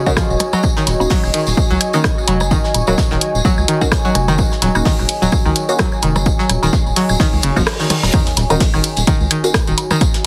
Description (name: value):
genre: minimal techno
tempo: 128 BPM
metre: 4/4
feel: swing 56% on 16ths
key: Eb minor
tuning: A4 = 439 Hz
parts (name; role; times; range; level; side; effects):
- string-like resonator pluck; riff; 0.0-10.0 s; Db3 to Gb3; -22 LUFS; equal; chorus, sidechain pumping, tape echo
- deep dark ambient pad; texture; 0.0-10.3 s; Gb4 to Bb5; -25 LUFS; equal; chorus, built-in reverb, sidechain pumping
- filtered dub chord stab; stabs; 0.1-9.5 s; Bb3 to Gb4; -24 LUFS; equal; phaser, delay
- electronic kick drum; drums; 0.1-10.1 s; none; -18 LUFS; equal; none
- tambourine; percussion; 0.1-10.2 s; none; -30 LUFS; equal; none
- modern studio drum kit; drums; 0.2-10.2 s; hi-hat, snare drum, tambourine; -31 LUFS; equal; high-pass filter on hats, high-pass filter on snare, high-pass filter on perc, high-pass filter on room
- punchy analog drum machine; drums; 0.2-10.2 s; hi-hat, rim click; -21 LUFS; equal; none
- claves, percussion blips and woodblock; percussion; 0.2-10.0 s; none; -25 LUFS; equal; delay
- round analog bass; bass; 0.3-9.7 s; Eb1 to Db2; -21 LUFS; equal; sidechain pumping
- reverse cymbal and sub drop; sound effects; 7.4-10.0 s; none; -29 LUFS; equal; none
room: light reverb, small room ambience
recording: heavily compressed radio sound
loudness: -15 LUFS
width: mono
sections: 0.0-8.1 A section; 8.1-10.3 B section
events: reverse cymbal 7.4-8.1; kick drops out 7.7-8.1; band accent 7.7; drop 8.1-10.3; impact 8.1-10.0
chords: 0.0 Ebm7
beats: 0.17 | 0.64 1.10 1.57 2.04 | 2.51 2.98 3.45 3.92 | 4.39 4.86 5.32 5.79 | 6.26 6.73 7.20 7.67 | 8.14 8.61 9.07 9.54 | 10.01